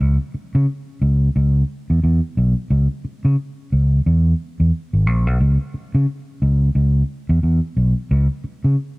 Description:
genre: funk.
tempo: 89 BPM.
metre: 4/4.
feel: swing 60% on 16ths.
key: C# dorian.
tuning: A4 = 440 Hz.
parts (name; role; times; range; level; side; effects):
fingered electric bass; solo; 0.0-8.7 s; G#1 to C#3; -16 LUFS; equal; none.
room: little or no reverb.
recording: dry, close 1970s-style studio recording.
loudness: -16 LUFS.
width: side -24 dB against mid.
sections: 0.0-9.0 A section.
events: none.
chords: none.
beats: | 0.00 0.68 1.35 2.03 | 2.70 3.38 4.05 4.73 | 5.40 6.08 6.75 7.43 | 8.10.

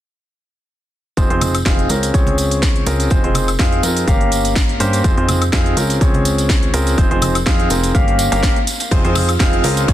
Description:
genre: piano house.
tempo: 124 BPM.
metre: 4/4.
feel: swing 54% on 16ths.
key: F minor.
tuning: A4 = 440 Hz.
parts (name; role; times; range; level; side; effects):
clear concert grand piano; riff; 1.2-9.9 s; Bb3 to F5; -18 LUFS; equal; sidechain pumping, low-pass filter, digital delay.
plucky analog bass; bass; 1.2-9.9 s; F1 to G2; -20 LUFS; equal; sidechain pumping.
electronic kick drum; drums; 1.2-9.9 s; none; -16 LUFS; equal; studio ambience.
house drum kit; drums; 1.2-9.9 s; hi-hat, snare drum, woodblock; -22 LUFS; equal; studio ambience.
tambourine and congas; percussion; 1.2-9.9 s; none; -26 LUFS; right 2 dB; none.
analog string pad; sustained chords; 8.9-9.9 s; F4 to F5; -24 LUFS; right 3 dB; ensemble chorus, sidechain pumping.
modern studio drum kit; drums; 8.9-9.9 s; ride cymbal, snare drum; -27 LUFS; left 5 dB; high-pass filter on cymbals, studio ambience, high-pass filter on snare, high-pass filter on room.
room: studio reverb.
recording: dense, heavily limited modern master.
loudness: -13 LUFS.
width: side -12 dB against mid.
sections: 1.2-9.9 A section.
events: none.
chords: 1.2 Fm7; 1.9 Dbmaj7; 3.1 Fm7; 4.1 Gdim; 5.0 Fm7; 5.8 Dbmaj7; 7.0 Fm7; 7.9 Gdim; 8.9 Fm7.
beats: | 1.17 1.66 2.14 2.62 | 3.11 3.59 4.08 4.56 | 5.04 5.53 6.01 6.50 | 6.98 7.46 7.95 8.43 | 8.91 9.40 9.88.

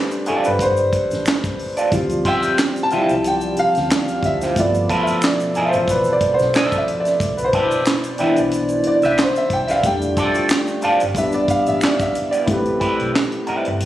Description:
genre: R&B, neo-soul.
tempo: 91 BPM.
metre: 4/4.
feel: swing 53% on 16ths.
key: D dorian.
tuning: A4 = 440 Hz.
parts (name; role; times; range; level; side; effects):
warm concert grand piano; accompaniment; 0.0-13.9 s; A2 to A5; -18 LUFS; equal; none.
tight funk drum kit; drums; 0.1-13.9 s; handclaps, hi-hat, kick drum, snare drum; -22 LUFS; right 1 dB; none.
egg shaker and finger snaps; percussion; 0.1-12.5 s; none; -33 LUFS; right 1 dB; none.
electric guitar at the edge of break-up; second line; 0.3-13.7 s; G3 to E5; -22 LUFS; right 2 dB; wah.
vintage muted fingered electric bass; bass; 0.3-13.9 s; F1 to D2; -27 LUFS; equal; none.
hollow soft pad; sustained chords; 2.2-12.5 s; B2 to D5; -27 LUFS; right 2 dB; chorus.
room: light reverb, small room reverb.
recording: recorded on a phone in the room, studio reverb, compression.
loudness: -16 LUFS.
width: side -13 dB against mid.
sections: 0.0-12.5 A section; 12.5-13.9 B section.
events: grand piano solo 0.0-12.5.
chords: 0.0 F6 (rootless); 1.9 Dm11; 4.6 G13 (rootless); 7.2 Cmaj9; 9.8 F6; 11.2 A9sus4; 12.5 Am9.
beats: 0.61 1.27 | 1.93 2.58 3.24 3.90 | 4.56 5.22 5.88 6.54 | 7.20 7.86 8.52 9.18 | 9.84 10.50 11.16 11.81 | 12.47 13.13 13.79.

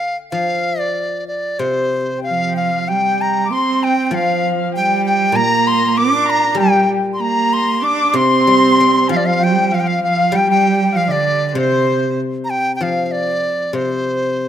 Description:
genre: chinese traditional, Chinese chamber ensemble.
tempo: 96 BPM.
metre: 2/4.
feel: rubato.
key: C shang mode.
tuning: A4 = 440 Hz.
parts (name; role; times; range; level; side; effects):
bright reedy large dizi; melody; 0.0-14.5 s; C5 to D6; -17 LUFS; right 1 dB; none.
guzheng; accompaniment; 0.3-14.5 s; Bb2 to C4; -22 LUFS; left 3 dB; none.
dark erhu; second line; 2.2-12.1 s; C5 to D6; -20 LUFS; left 7 dB; none.
rich cello; second line; 2.3-12.2 s; C3 to D4; -18 LUFS; right 6 dB; none.
room: light reverb.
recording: close, detailed microphones.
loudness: -14 LUFS.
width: side -10 dB against mid.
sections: 0.0-2.9 A section; 2.9-12.8 B section; 12.8-14.5 C section.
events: none.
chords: none.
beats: | 0.35 0.98 | 1.61 2.25 | 2.89 3.52 | 4.14 4.75 | 5.37 5.98 | 6.59 7.21 | 7.84 8.48 | 9.10 9.72 | 10.34 10.95 | 11.56 12.19 | 12.82 13.44 | 14.06.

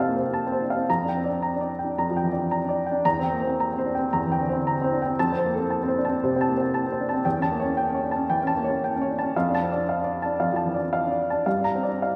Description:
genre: classical, romantic character piece for solo piano.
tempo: 114 BPM.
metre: 4/4.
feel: rubato.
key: F major, D minor from 7.3 s.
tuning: A4 = 438 Hz.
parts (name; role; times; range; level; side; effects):
warm upright piano; solo; 0.0-12.2 s; E2 to Bb5; -25 LUFS; equal; none.
room: wet scoring stage reverb, RT60 1.6 s.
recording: heard from further back in the room.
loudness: -25 LUFS.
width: mono.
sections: 0.0-12.2 A section.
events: none.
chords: 0.0 F; 0.9 Gm7/F; 3.0 C7/E; 5.2 F; 7.3 A7/E; 9.3 Dm/F; 11.5 Gm7.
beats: 0.33 | 0.88 1.43 1.97 2.50 | 3.05 3.59 4.11 4.64 | 5.17 5.70 6.22 6.74 | 7.25 7.78 8.30 8.83 | 9.35 9.87 10.39 10.92 | 11.46 11.99.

